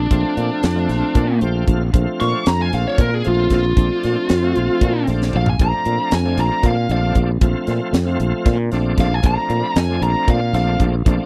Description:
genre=electric jazz fusion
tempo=230 BPM (eighths)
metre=7/8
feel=straight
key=Bb major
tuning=A4 = 443 Hz
part: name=bluesy overdriven lead guitar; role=melody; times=0.0-10.8 s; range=D4 to Db6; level=-24 LUFS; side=equal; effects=distortion
part: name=ethereal airy pad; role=sustained chords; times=0.3-11.3 s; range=C4 to D4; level=-33 LUFS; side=equal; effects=none
part: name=sustaining fretless electric bass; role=bass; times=0.0-11.2 s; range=Bb1 to Bb2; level=-21 LUFS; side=equal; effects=none
part: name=bright tonewheel organ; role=accompaniment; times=0.1-11.3 s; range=F3 to G5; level=-26 LUFS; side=equal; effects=slow rotary speaker, chorus vibrato
part: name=crisp fusion drum kit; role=drums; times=0.1-11.2 s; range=hi-hat, kick drum, snare drum, toms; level=-20 LUFS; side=equal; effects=none
room=little or no reverb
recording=dry, close 1970s-style studio recording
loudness=-18 LUFS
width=mono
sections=0.0-11.3 A section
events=lead electric guitar solo 0.0-11.3; tonewheel organ fill 1.2-1.9; drum fill 5.2-5.6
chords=0.0 Bbmaj9

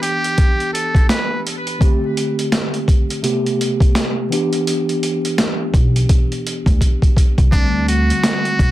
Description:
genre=hip hop, boom-bap hip-hop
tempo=84 BPM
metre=4/4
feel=swing 60% on 16ths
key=E minor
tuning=A4 = 440 Hz
part: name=trumpet with metal mute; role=melody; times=0.0-1.4, 7.5-8.7 s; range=D4 to B4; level=-21 LUFS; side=right 1 dB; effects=high-pass filter, low-pass filter, digital delay
part: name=mellow tine electric piano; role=accompaniment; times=0.0-8.7 s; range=C3 to G4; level=-21 LUFS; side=equal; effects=medium stereo tremolo, high-pass filter, low-pass filter
part: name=boom bap sampler-style drum kit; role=drums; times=0.0-8.7 s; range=hi-hat, kick drum, snare drum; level=-16 LUFS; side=equal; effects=none
part: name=upright bass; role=bass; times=5.7-8.7 s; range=B1 to D2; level=-18 LUFS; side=equal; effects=none
room=light reverb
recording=dense, heavily limited modern master, vinyl crackle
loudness=-14 LUFS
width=side -15 dB against mid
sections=0.0-8.7 A section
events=break 0.0-4.7; drum fill 6.8-7.5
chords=0.0 Em7; 1.8 D7sus4; 3.2 Am7/C; 4.3 Em7; 7.5 D7sus4

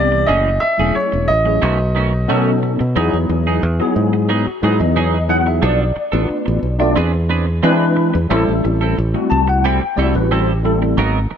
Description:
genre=jazz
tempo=90 BPM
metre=4/4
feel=straight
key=E major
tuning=A4 = 445 Hz
part: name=clear baby grand piano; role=melody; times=0.0-2.6 s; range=C#5 to E5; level=-17 LUFS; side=equal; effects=none
part: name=bright tine electric piano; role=accompaniment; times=0.0-11.0 s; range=E3 to A5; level=-18 LUFS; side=left 2 dB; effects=medium stereo tremolo, ensemble chorus
part: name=fingered electric bass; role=bass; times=0.0-11.3 s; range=E1 to E3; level=-17 LUFS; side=equal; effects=none
part: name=clean electric guitar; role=stabs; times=0.1-11.3 s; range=D#3 to B4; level=-23 LUFS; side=right 5 dB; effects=analog chorus
room=light reverb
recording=none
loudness=-14 LUFS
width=side -8 dB against mid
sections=0.0-3.0 A section; 3.0-11.4 B section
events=none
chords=0.3 F#m9; 1.6 B9; 3.0 Emaj9; 5.6 Bm7b5; 7.0 E7b13; 8.3 Am7

